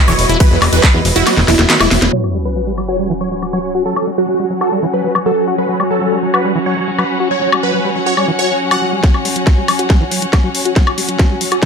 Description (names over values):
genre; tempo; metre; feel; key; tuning
psychedelic trance; 139 BPM; 4/4; straight; unclear; A4 = 440 Hz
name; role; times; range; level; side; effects
swarming drone; sustained chords; 0.1-11.7 s; F#3 to F#4; -22 LUFS; equal; built-in reverb, vintage 12-bit sampler grit, sidechain pumping
rich studio string section; texture; 0.0-11.7 s; B3 to F#5; -21 LUFS; left 2 dB; sidechain pumping
supersaw stab; melody; 0.1-8.9 s; E4 to F#5; -18 LUFS; right 2 dB; phaser, sidechain pumping, digital delay
liquid acid bass; riff; 0.1-11.7 s; D#3 to F#4; -20 LUFS; moving between left 4 dB and right 5 dB; chorus, auto-pan, sidechain pumping, digital delay
fat analog bass; bass; 0.1-2.1 s; E1 to E2; -15 LUFS; equal; none
drum and bass drum kit; drums; 0.1-11.7 s; handclaps, hi-hat, ride cymbal, snare drum, woodblock; -16 LUFS; left 2 dB; overdrive, studio reverb
electronic kick drum; drums; 0.4-0.9, 9.0-11.7 s; none; -11 LUFS; equal; overdrive, studio reverb
sub drop and swell; sound effects; 2.1-3.9, 8.4-9.0 s; none; -23 LUFS; right 1 dB; none
room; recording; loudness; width
light reverb, digital ambience; low-pass filter; -12 LUFS; side -6 dB against mid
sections
0.0-2.1 A section; 2.1-9.0 B section; 9.0-11.7 C section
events
drop 0.0-2.1; kick drops out 1.3-2.1; drum fill 1.3-2.1, 9.0-11.7; band accent 2.0; impact 2.1-3.9; filter sweep 2.1-9.0; swell 8.4-9.0; build-up 9.0-11.7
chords
0.0 E5; 2.1 F#5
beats
| 0.40 0.83 1.27 1.70 | 2.13 2.56 2.99 3.42 | 3.86 4.29 4.72 5.15 | 5.58 6.01 6.45 6.88 | 7.31 7.74 8.17 8.60 | 9.04 9.47 9.90 10.33 | 10.76 11.19 11.63